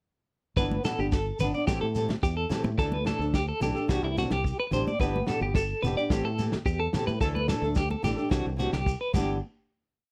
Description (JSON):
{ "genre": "highlife guitar band", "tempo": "109 BPM", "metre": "4/4", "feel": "straight", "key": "G major", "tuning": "A4 = 441 Hz", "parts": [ { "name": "flamenco guitar", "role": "accompaniment", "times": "0.6-9.4 s", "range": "E3 to A4", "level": "-34 LUFS", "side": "equal", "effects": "none" }, { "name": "clean electric guitar", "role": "arpeggios", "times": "0.6-9.4 s", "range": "E4 to D5", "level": "-33 LUFS", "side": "equal", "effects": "tremolo, slapback echo" }, { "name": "fingered electric bass", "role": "bass", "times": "0.6-9.4 s", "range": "E1 to A2", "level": "-34 LUFS", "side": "equal", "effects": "none" }, { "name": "vintage drum kit", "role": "drums", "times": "0.6-9.3 s", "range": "crash cymbal, kick drum, snare drum", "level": "-31 LUFS", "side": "equal", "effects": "none" }, { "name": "shekere", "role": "percussion", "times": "0.6-9.4 s", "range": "none", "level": "-41 LUFS", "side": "equal", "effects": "none" }, { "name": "congas", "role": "percussion", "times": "0.7-9.4 s", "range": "none", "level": "-37 LUFS", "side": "equal", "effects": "none" } ], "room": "little or no reverb", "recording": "dry, close 1970s-style studio recording", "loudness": "-28 LUFS", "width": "mono", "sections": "0.6-9.4 groove; 9.4-10.1 final hit", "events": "none", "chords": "0.6 G6; 1.7 Am7; 2.8 Dsus2; 3.9 Cadd9; 5.0 G6; 6.1 Am7; 7.2 Dsus2; 8.3 Cadd9; 9.1 G6; 9.4 N.C." }